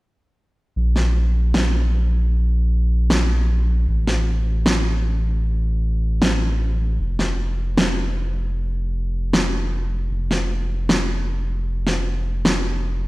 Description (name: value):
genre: future bass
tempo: 154 BPM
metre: 4/4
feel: swing 55% on 16ths, half-time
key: unclear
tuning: A4 = 440 Hz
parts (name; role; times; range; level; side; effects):
- saturated sub bass; bass; 0.8-13.1 s; F1 to Bb1; -20 LUFS; equal; none
- electronic snare drum; drums; 1.0-12.5 s; none; -22 LUFS; equal; none
room: light reverb, digital ambience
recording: played on a big sound system in a bare room, large studio reverb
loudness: -18 LUFS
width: side -20 dB against mid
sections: 0.8-13.1 A section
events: none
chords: none